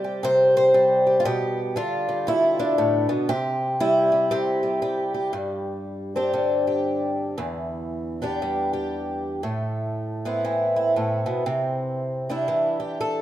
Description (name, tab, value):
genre	folk, solo fingerstyle acoustic guitar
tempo	118 BPM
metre	4/4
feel	swing 61% on 8ths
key	G mixolydian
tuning	A4 = 440 Hz
part	picked twelve-string acoustic guitar	solo	0.0-13.2 s	E2 to D5	-21 LUFS	equal	none
room	moderate large studio reverb, RT60 1.2 s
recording	none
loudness	-21 LUFS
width	side -12 dB against mid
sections	0.0-5.3 A section; 5.3-13.2 B section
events	none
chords	0.0 C5; 1.3 Gadd9/B; 3.3 C; 5.3 Gsus4; 7.4 Em7; 9.4 Amadd9; 11.5 Cadd9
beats	0.23 0.74 | 1.25 1.76 2.27 2.78 | 3.29 3.80 4.31 4.82 | 5.33 5.84 6.36 6.87 | 7.38 7.89 8.40 8.91 | 9.42 9.93 10.44 10.95 | 11.46 11.97 12.48 12.99